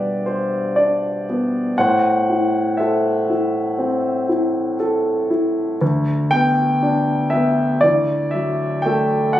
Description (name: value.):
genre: classical, lyrical solo piano.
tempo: 60 BPM.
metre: 4/4.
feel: rubato.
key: G major.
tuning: A4 = 440 Hz.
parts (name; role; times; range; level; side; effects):
warm grand piano; solo; 0.0-9.4 s; D2 to G5; -16 LUFS; equal; none.
room: moderate recital hall reverb, RT60 1.5 s.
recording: recorded on a phone in the room, studio ambience, compression.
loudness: -16 LUFS.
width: side -13 dB against mid.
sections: 0.0-9.4 A section.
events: none.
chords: 0.0 G; 1.8 Am; 5.8 G/D; 7.8 Dadd9.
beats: 0.78 | 1.79 2.79 3.79 4.80 | 5.81 6.82 7.83 8.85.